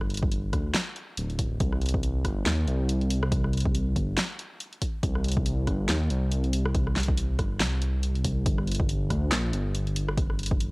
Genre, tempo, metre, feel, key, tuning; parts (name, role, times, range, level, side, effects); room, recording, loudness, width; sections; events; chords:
deep dubstep; 140 BPM; 4/4; swing 57% on 16ths, half-time; A4 = 440 Hz
dark detuned saw bass; bass; 0.0-10.7 s; D1 to Eb2; -26 LUFS; equal; tube saturation
deep house drum kit; drums; 0.0-10.7 s; handclaps, hi-hat, rim click, snare drum; -31 LUFS; equal
electronic kick drum; drums; 0.2-10.6 s; -28 LUFS; equal
little or no reverb; home recording on cassette; -24 LUFS; side -27 dB against mid
0.0-10.7 A section